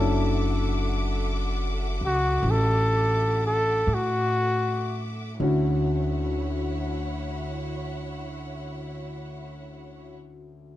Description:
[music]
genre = jazz ballad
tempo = 38-49 BPM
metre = 4/4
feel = swing 69% on 8ths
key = D major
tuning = A4 = 441 Hz
[part]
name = warm grand piano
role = accompaniment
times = 0.0-10.8 s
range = D2 to A4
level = -30 LUFS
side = left 2 dB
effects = none
[part]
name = warm symphonic string section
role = sustained chords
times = 0.0-10.1 s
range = E4 to D6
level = -36 LUFS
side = equal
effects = none
[part]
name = upright bass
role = bass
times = 0.0-10.1 s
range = F#1 to A2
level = -27 LUFS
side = right 1 dB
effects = none
[part]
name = breathy trumpet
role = melody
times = 2.1-5.2 s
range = F#4 to A4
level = -24 LUFS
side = left 1 dB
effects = plate reverb
[sound]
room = light reverb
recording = dark, warm production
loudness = -23 LUFS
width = side -14 dB against mid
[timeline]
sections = 0.0-5.4 A section; 5.4-10.8 B section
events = slowing down 0.0-5.4; trumpet solo 0.0-5.4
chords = 0.0 Dmaj9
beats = 1.11 2.44 3.87 | 5.40 6.99 8.57 10.15

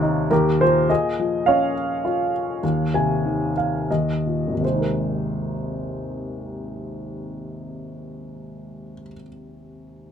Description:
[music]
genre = classical, lyrical solo piano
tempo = 76-105 BPM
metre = 3/4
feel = rubato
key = Ab major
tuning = A4 = 440 Hz
[part]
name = clear upright piano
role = solo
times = 0.0-10.1 s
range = Ab1 to Ab5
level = -21 LUFS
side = equal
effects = none
[sound]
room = little or no reverb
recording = close, detailed microphones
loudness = -19 LUFS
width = side -8 dB against mid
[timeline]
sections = 0.9-4.6 A section; 4.6-9.2 B section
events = slowing down 0.9-4.6; upright piano fill 2.6-4.6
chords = 0.3 Eb; 0.9 Bbm7; 2.6 Ab/Eb; 3.9 Eb5; 4.6 Abadd9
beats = 0.31 | 0.90 1.47 2.04 | 2.63 3.24 3.89 | 4.63 5.41 6.16 | 6.90 7.65 8.41

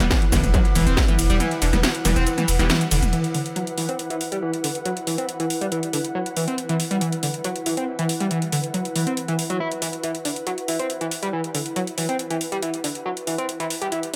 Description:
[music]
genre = driving peak-time techno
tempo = 139 BPM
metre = 4/4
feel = straight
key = unclear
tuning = A4 = 438 Hz
[part]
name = overdriven synth lead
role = riff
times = 0.0-14.2 s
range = D3 to E4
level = -27 LUFS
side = equal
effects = distortion, lush chorus, cassette tape, sidechain pumping, dub echo
[part]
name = rave stab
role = stabs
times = 0.0-2.7 s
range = E3 to B3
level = -30 LUFS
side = equal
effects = chorus, built-in reverb, sidechain pumping, tape echo
[part]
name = saturated sub bass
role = bass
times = 0.0-3.1 s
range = E1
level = -24 LUFS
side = equal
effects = sidechain pumping, low-pass filter
[part]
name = metallic inharmonic drone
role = drone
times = 0.0-3.2 s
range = E3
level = -37 LUFS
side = equal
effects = none
[part]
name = techno drum kit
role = drums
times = 0.0-14.2 s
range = hi-hat, ride cymbal, shaker, snare drum, toms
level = -29 LUFS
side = equal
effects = none
[part]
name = ethereal airy pad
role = texture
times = 0.0-14.2 s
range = E4 to F#5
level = -32 LUFS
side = equal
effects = ensemble chorus, built-in reverb, sidechain pumping
[part]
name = electronic kick drum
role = drums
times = 0.1-1.1 s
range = none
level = -22 LUFS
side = equal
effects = distortion
[sound]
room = moderate plate reverb, RT60 1.5 s, digital ambience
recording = none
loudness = -23 LUFS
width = mono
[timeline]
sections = 0.0-3.1 A section; 3.1-14.2 B section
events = drop 0.0-3.1; kick drops out 1.4-3.1; band accent 2.7; filter sweep on analog synth lead 3.1-14.2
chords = 0.0 Em; 3.1 E5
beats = 0.11 0.54 0.97 | 1.40 1.83 2.27 2.70 | 3.13 3.56 3.99 4.42 | 4.86 5.29 5.72 6.15 | 6.58 7.01 7.45 7.88 | 8.31 8.74 9.17 9.60 | 10.04 10.47 10.90 11.33 | 11.76 12.19 12.62 13.06 | 13.49 13.92

